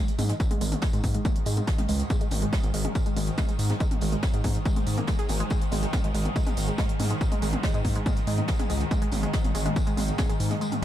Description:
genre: driving peak-time techno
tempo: 141 BPM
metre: 4/4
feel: straight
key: unclear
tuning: A4 = 440 Hz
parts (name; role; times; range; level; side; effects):
- swarming drone; drone; 0.1-10.8 s; G#2 to D#3; -34 LUFS; left 1 dB; built-in reverb, sidechain pumping
- techno drum kit; drums; 0.1-10.8 s; hi-hat, toms; -34 LUFS; equal; none
- analog pluck; riff; 0.2-10.8 s; G#3 to G#4; -33 LUFS; right 2 dB; chorus, sidechain pumping, ping-pong delay
- gritty driven synth bass; bass; 0.2-10.8 s; G#1 to G#2; -27 LUFS; equal; sidechain pumping
- jazz brush drum kit; drums; 0.2-10.8 s; hi-hat, snare drum, tambourine; -40 LUFS; right 1 dB; high-pass filter on hats, high-pass filter on snare, high-pass filter on perc, high-pass filter on room
- electronic kick drum; drums; 0.4-10.3 s; none; -26 LUFS; equal; none
room: light reverb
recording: none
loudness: -23 LUFS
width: side -12 dB against mid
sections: 0.0-10.8 A section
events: filter sweep on synth arpeggio sound 0.0-10.8; kick drops out 10.6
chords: 0.0 G#5

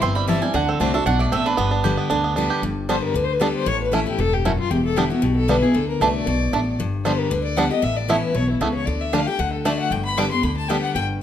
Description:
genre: bluegrass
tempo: 230 BPM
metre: 4/4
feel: straight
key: G major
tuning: A4 = 441 Hz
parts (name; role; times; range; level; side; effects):
- picked steel-string acoustic guitar; accompaniment; 0.0-11.2 s; E2 to G4; -22 LUFS; left 2 dB; none
- bluegrass banjo; arpeggios; 0.0-10.8 s; D3 to G4; -24 LUFS; right 4 dB; none
- mandolin; stabs; 0.0-1.7 s; A4 to C6; -25 LUFS; right 6 dB; none
- upright bass; bass; 0.0-11.2 s; E1 to D2; -26 LUFS; equal; none
- dark fiddle; second line; 2.9-11.0 s; E4 to D6; -24 LUFS; left 5 dB; none
room: light reverb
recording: none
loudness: -18 LUFS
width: side -10 dB against mid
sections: 0.0-2.6 A section; 2.6-11.2 A section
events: mandolin solo 0.0-2.6; fiddle solo 2.6-11.2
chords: 0.0 C; 0.5 D7; 1.6 G; 3.7 A; 4.7 Em7; 5.7 D; 6.8 G; 7.8 Aadd9; 8.9 Dsus4; 9.4 D; 9.9 G

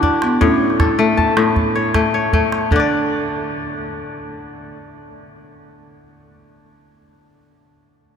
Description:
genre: west african traditional, West African string and xylophone music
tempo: 104 BPM (dotted quarters)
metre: 12/8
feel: straight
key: unclear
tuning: A4 = 441 Hz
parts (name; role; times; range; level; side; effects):
- marimba with soft mallets; melody; 0.0-5.8 s; B3 to D4; -22 LUFS; right 3 dB; none
- kora; arpeggios; 0.0-5.9 s; A2 to A5; -17 LUFS; left 3 dB; none
- calabash; percussion; 0.0-2.9 s; none; -21 LUFS; right 2 dB; none
room: wet cathedral reverb, RT60 6.1 s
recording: in a vast, echoing space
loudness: -14 LUFS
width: side -7 dB against mid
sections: 0.0-2.7 A section; 2.7-5.0 B section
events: none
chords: 0.4 A; 2.7 N.C.

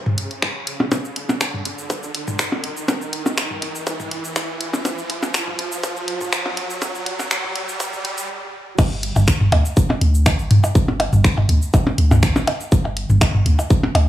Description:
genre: minimal techno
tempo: 122 BPM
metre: 4/4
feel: swing 53% on 16ths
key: unclear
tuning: A4 = 440 Hz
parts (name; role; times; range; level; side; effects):
- riser; sound effects; 0.0-8.3 s; none; -27 LUFS; right 1 dB; none
- electronic toms and percussion blips; percussion; 0.1-14.1 s; none; -19 LUFS; equal; small room ambience, analog delay
- garage drum kit; drums; 0.2-14.1 s; cabasa, crash cymbal, finger snaps, hi-hat; -25 LUFS; equal; small room ambience
- electronic kick drum; drums; 0.4-13.8 s; none; -17 LUFS; equal; high-pass filter on kick, small room ambience
- punchy sub bass; bass; 8.8-14.1 s; G1 to D2; -18 LUFS; equal; sidechain pumping
room: light reverb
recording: dry, gritty hardware recording, high-pass filter, studio reverb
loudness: -17 LUFS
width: side -13 dB against mid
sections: 0.0-8.8 A section; 8.8-14.1 B section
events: build-up 0.0-8.8; riser 0.0-8.3; stop 8.3-8.8; drop 8.8-14.1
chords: none

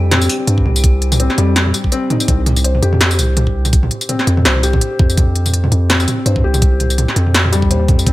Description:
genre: half-time drum and bass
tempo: 166 BPM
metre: 4/4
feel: swing 56% on 16ths, half-time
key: unclear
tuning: A4 = 440 Hz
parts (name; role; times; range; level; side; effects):
- felt-muted upright piano; arpeggios; 0.0-8.1 s; G3 to C5; -20 LUFS; left 2 dB; digital delay
- long sustained 808-style bass; bass; 0.0-8.1 s; C2 to G2; -14 LUFS; equal; none
- metallic inharmonic drone; texture; 0.0-2.3 s; G4; -29 LUFS; left 3 dB; chorus, built-in reverb, phaser
- industrial drum kit; drums; 0.1-8.1 s; hi-hat, snare drum, tambourine, toms; -17 LUFS; equal; overdrive
- electronic kick drum; drums; 0.6-8.1 s; none; -14 LUFS; equal; none
room: little or no reverb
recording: none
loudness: -12 LUFS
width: side -17 dB against mid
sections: 0.0-2.3 A section; 2.3-8.1 A section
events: drop 0.0-2.3, 2.3-8.1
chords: 0.0 C5

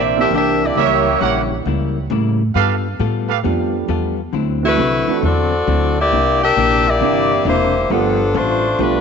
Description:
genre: jazz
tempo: 135 BPM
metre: 4/4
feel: swing 66% on 8ths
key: unclear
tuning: A4 = 439 Hz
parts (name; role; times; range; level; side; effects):
- clear saxophone section; melody; 0.0-1.5, 4.7-9.0 s; F3 to E5; -16 LUFS; left 2 dB; slapback echo
- hollow-body jazz guitar; accompaniment; 0.0-9.0 s; C3 to A4; -22 LUFS; left 13 dB; none
- warm trumpet section; stabs; 0.0-3.4 s; G4 to F#5; -20 LUFS; right 13 dB; none
- upright bass; bass; 0.0-9.0 s; E1 to A2; -21 LUFS; right 1 dB; none
- warm concert grand piano; accompaniment; 0.2-9.0 s; E3 to G4; -22 LUFS; right 14 dB; none
room: light reverb, small room ambience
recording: 1960s-style stereo with parts hard left and right, nothing above 7.8 kHz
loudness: -14 LUFS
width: side -6 dB against mid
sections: 0.0-9.0 A section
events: none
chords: 0.0 C9; 0.8 C#dim7; 2.6 G9; 4.3 D9; 6.1 C9; 7.9 G9

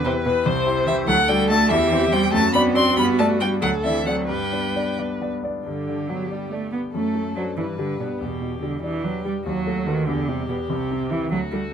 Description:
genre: quick classical-period movement for piano quartet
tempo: 95 BPM (dotted quarters)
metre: 6/8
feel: rubato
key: G major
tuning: A4 = 440 Hz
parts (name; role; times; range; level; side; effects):
- rich violin; melody; 0.0-11.7 s; F#4 to C6; -25 LUFS; left 3 dB; none
- rich cello; second line; 0.0-11.6 s; B2 to C4; -24 LUFS; right 4 dB; none
- clear concert grand piano; accompaniment; 0.0-11.7 s; C2 to E5; -25 LUFS; left 3 dB; none
- warm viola; accompaniment; 0.0-11.3 s; D3 to C5; -28 LUFS; right 2 dB; none
room: little or no reverb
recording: close, detailed microphones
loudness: -20 LUFS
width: side -8 dB against mid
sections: 0.0-5.7 A section; 5.7-11.7 A section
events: none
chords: 0.5 C; 1.1 D; 1.7 C/E; 2.3 D7/F#; 3.0 G; 3.6 D5; 4.3 G; 6.9 D7/F#; 7.6 G; 8.2 Em7; 9.5 B7/D#; 10.1 Em; 10.7 C

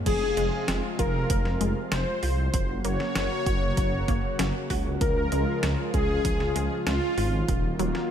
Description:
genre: synthwave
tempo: 97 BPM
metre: 4/4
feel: straight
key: F phrygian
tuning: A4 = 443 Hz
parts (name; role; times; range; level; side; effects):
- lush unison pad; sustained chords; 0.0-8.1 s; C3 to Gb4; -33 LUFS; equal; chorus, sidechain pumping
- soft supersaw; melody; 0.1-8.1 s; F4 to Db5; -30 LUFS; equal; digital delay
- soft synth bell; second line; 0.1-8.1 s; F4 to Db5; -36 LUFS; left 3 dB; none
- wide unison pluck; arpeggios; 0.1-8.1 s; Eb3 to Gb4; -34 LUFS; left 1 dB; digital delay
- dark detuned saw bass; bass; 0.1-7.9 s; Eb1 to Db2; -28 LUFS; equal; sidechain pumping
- detuned 8-bit digital drum machine; drums; 0.1-8.1 s; crash cymbal, hi-hat, snare drum; -33 LUFS; equal; none
- electronic kick drum; drums; 0.1-7.6 s; none; -28 LUFS; equal; none
room: light reverb, digital ambience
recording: none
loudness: -23 LUFS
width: side -9 dB against mid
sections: 0.1-8.1 A section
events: none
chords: 0.1 Fm; 2.5 Gb; 5.0 Db; 7.5 Ebm

